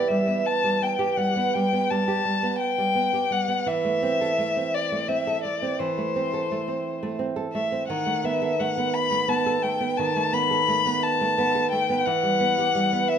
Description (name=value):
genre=romantic duo for violin and classical guitar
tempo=57 BPM (dotted quarters)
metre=12/8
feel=rubato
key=E minor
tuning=A4 = 440 Hz
part: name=warm violin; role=melody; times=0.0-13.2 s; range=C5 to B5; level=-24 LUFS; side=left 4 dB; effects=none
part: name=nylon-string guitar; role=accompaniment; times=0.0-13.2 s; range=D#3 to A4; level=-25 LUFS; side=right 4 dB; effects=none
room=wet recital hall reverb, RT60 1.6 s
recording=minimal, uncompressed stereo recording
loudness=-22 LUFS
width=side -8 dB against mid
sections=0.0-13.2 A section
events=none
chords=0.0 Em; 3.7 Am/E; 7.9 B7/D#; 12.1 Em